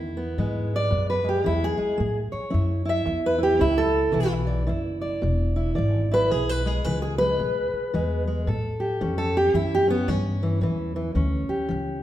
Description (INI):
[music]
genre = acoustic country blues, solo or duo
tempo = 111 BPM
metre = 4/4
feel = swing 61% on 8ths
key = E mixolydian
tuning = A4 = 440 Hz
[part]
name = fingerpicked steel-string acoustic guitar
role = melody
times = 0.0-12.0 s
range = E2 to E5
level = -23 LUFS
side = equal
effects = none
[part]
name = upright bass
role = bass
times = 0.0-12.0 s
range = E1 to A2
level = -26 LUFS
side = left 1 dB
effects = none
[sound]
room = wet recital hall reverb, RT60 1.3 s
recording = recorded in a church or concert hall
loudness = -22 LUFS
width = side -12 dB against mid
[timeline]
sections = 0.0-12.0 A section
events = steel-string acoustic guitar solo 0.0-12.0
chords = 0.0 E; 2.0 A; 4.2 E7; 8.5 A7